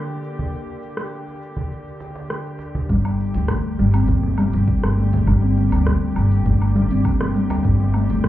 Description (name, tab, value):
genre	organic downtempo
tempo	101 BPM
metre	4/4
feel	straight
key	G minor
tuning	A4 = 439 Hz
part	warm studio string section	sustained chords	0.0-8.3 s	D3 to G4	-31 LUFS	equal	vintage 12-bit sampler grit, sidechain pumping, shimmer reverb
part	deep house drum kit	drums	0.2-8.3 s	hi-hat, rim click, shaker, woodblock	-32 LUFS	right 1 dB	none
part	cajon	percussion	0.4-8.2 s	none	-30 LUFS	right 2 dB	none
part	kalimba	arpeggios	2.9-8.3 s	G3 to C4	-21 LUFS	left 2 dB	ping-pong delay, shimmer reverb
part	upright bass	bass	2.9-8.3 s	G1 to D2	-19 LUFS	equal	tube saturation, sidechain pumping
part	electronic kick drum	drums	2.9-8.3 s	none	-22 LUFS	equal	none
room	light reverb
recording	heard muffled through a wall, club reverb, EQ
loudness	-17 LUFS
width	side -14 dB against mid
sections	0.0-2.9 A section; 2.9-8.3 B section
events	none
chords	0.0 Gm; 2.9 G5